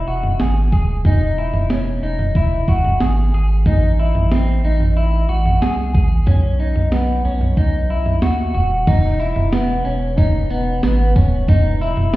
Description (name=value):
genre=dream pop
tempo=92 BPM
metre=4/4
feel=straight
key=E major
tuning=A4 = 440 Hz
part: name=clean electric guitar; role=arpeggios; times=0.0-12.2 s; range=B3 to G#4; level=-22 LUFS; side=left 1 dB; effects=wide subtle chorus, ping-pong delay
part: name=saturated sub bass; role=bass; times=0.0-12.2 s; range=D#1 to D#2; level=-18 LUFS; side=equal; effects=none
part: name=clean 12-bit digital drum machine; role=drums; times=0.2-12.2 s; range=crash cymbal, kick drum, snare drum, tambourine, toms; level=-17 LUFS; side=right 1 dB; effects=none
room=light reverb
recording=heard muffled through a wall, stone room reverb, EQ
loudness=-14 LUFS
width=side -17 dB against mid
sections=0.0-8.9 A section; 8.9-12.2 B section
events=none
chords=0.0 Emaj7; 3.7 Am6; 6.3 B; 8.9 Emaj7(no3)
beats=0.40 | 1.05 1.70 2.35 3.01 | 3.66 4.31 4.96 5.62 | 6.27 6.92 7.57 8.22 | 8.88 9.53 10.18 10.83 | 11.48 12.14